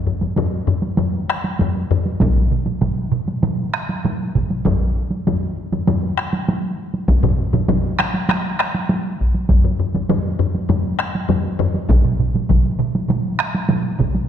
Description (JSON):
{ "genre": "japanese traditional, taiko drum ensemble", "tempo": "99 BPM", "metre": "4/4", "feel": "straight", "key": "none", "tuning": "none", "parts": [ { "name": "taiko ensemble", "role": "percussion", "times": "0.1-11.7 s", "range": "none", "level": "-21 LUFS", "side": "left 4 dB", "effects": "none" }, { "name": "solo taiko drums", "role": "percussion", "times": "0.2-14.3 s", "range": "none", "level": "-22 LUFS", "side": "right 1 dB", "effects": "none" }, { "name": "taiko ensemble", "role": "percussion", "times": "2.2-14.1 s", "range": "none", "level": "-21 LUFS", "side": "right 4 dB", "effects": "none" }, { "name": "taiko ensemble", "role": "percussion", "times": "2.2-14.1 s", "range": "none", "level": "-19 LUFS", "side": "equal", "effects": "none" } ], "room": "wet scoring stage reverb, RT60 1.7 s", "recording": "dark, warm production", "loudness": "-17 LUFS", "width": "side -9 dB against mid", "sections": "0.0-14.3 A section", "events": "speeding up 0.0-14.3", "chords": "none" }